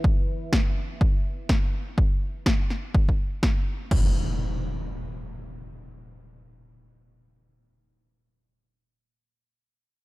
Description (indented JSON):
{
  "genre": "bass house",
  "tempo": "124 BPM",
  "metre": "4/4",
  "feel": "swing 58% on 16ths",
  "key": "none",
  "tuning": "none",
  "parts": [
    { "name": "electronic kick drum", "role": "drums", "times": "0.0-4.0 s", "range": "none", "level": "-22 LUFS", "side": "equal", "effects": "none" },
    { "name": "house drum kit", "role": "drums", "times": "0.5-4.0 s", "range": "crash cymbal, snare drum", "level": "-30 LUFS", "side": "left 1 dB", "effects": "none" },
    { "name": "impact", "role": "sound effects", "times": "3.9-8.6 s", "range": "none", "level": "-30 LUFS", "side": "equal", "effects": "none" }
  ],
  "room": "little or no reverb",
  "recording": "dark, warm production",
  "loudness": "-22 LUFS",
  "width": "side -20 dB against mid",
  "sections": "0.0-3.9 A section; 3.9-7.8 B section",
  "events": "none",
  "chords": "none",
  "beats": "| 0.04 0.53 1.01 1.49 | 1.98 2.46 2.94 3.43 | 3.91 4.40 4.88 5.36 | 5.85 6.33 6.82 7.30"
}